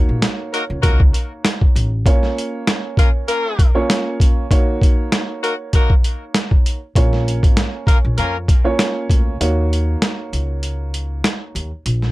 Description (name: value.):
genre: hip hop, boom-bap hip-hop.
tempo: 98 BPM.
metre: 4/4.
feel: swing 56% on 16ths.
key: unclear.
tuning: A4 = 440 Hz.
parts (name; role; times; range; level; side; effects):
dark upright piano; accompaniment; 0.0-11.7 s; Bb3 to Db5; -24 LUFS; right 2 dB; high-pass filter, low-pass filter.
upright bass; bass; 0.0-2.0, 7.0-12.1 s; Ab1 to F2; -20 LUFS; equal; none.
boom bap sampler-style drum kit; drums; 0.2-12.1 s; hi-hat, kick drum, snare drum; -15 LUFS; equal; none.
warm horn section; stabs; 0.5-8.4 s; Bb3 to Bb4; -22 LUFS; left 2 dB; high-pass filter, low-pass filter, analog delay.
room: little or no reverb.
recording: dry, gritty hardware recording.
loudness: -15 LUFS.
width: side -19 dB against mid.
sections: 0.0-9.4 A section; 9.4-12.1 B section.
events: break 9.4-12.1.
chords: 0.0 Ebm7; 2.1 Bbm; 4.5 Ebm7; 7.0 Bbm; 9.4 Ebm7.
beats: 0.22 0.83 1.44 | 2.06 2.67 3.28 3.89 | 4.51 5.12 5.73 6.34 | 6.96 7.57 8.18 8.79 | 9.40 10.02 10.63 11.24 | 11.85.